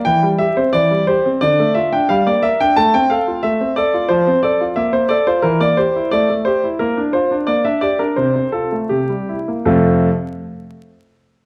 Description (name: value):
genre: classical-period piano sonatina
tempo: 76-91 BPM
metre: 2/4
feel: rubato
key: F major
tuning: A4 = 440 Hz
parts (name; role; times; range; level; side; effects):
- clear concert grand piano; solo; 0.0-10.1 s; F2 to A5; -16 LUFS; equal; none
room: moderate recital hall reverb, RT60 1.6 s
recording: worn, warbling old tape, cassette tape, vinyl crackle, warbly pitch drift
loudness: -16 LUFS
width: mono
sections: 0.0-9.7 A section; 9.7-11.1 B section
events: slowing down 6.1-9.7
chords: 0.1 C/E; 1.4 Dm; 2.1 Gm; 2.8 F/A; 4.1 F; 4.8 Bb5; 5.4 Edim; 6.1 Am7; 6.8 Bb; 7.5 Gm/Bb; 8.2 F/C; 8.9 C7; 9.7 F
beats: | 0.06 0.74 | 1.42 2.10 | 2.77 3.44 | 4.10 4.76 | 5.44 6.12 | 6.79 7.48 | 8.17 8.90 | 9.67